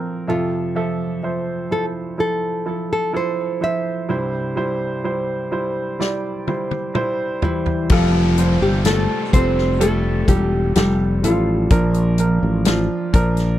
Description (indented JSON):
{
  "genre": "pop ballad",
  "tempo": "63 BPM",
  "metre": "4/4",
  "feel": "straight",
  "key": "F major",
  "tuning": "A4 = 437 Hz",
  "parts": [
    { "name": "warm baby grand piano", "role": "accompaniment", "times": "0.0-13.6 s", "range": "C2 to E5", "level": "-22 LUFS", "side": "right 2 dB", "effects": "none" },
    { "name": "nylon-string guitar", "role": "melody", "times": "0.3-13.6 s", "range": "E3 to E5", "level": "-21 LUFS", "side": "equal", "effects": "none" },
    { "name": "natural country drum kit", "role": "drums", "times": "6.0-13.6 s", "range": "crash cymbal, hi-hat, kick drum, snare drum, toms", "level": "-19 LUFS", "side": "left 1 dB", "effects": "none" },
    { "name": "sustaining fretless electric bass", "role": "bass", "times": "7.9-13.6 s", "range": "E1 to Bb1", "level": "-19 LUFS", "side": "left 1 dB", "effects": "none" },
    { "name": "downlifter", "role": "sound effects", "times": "7.9-13.6 s", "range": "none", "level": "-31 LUFS", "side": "left 1 dB", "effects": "none" }
  ],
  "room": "little or no reverb",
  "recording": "dry, close 1970s-style studio recording",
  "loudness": "-17 LUFS",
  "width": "side -13 dB against mid",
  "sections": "0.0-7.9 A section; 7.9-13.6 B section",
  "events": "drum fill 6.0-7.9",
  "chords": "0.3 Fmaj7; 4.1 C; 7.9 Fadd9; 11.7 Bb"
}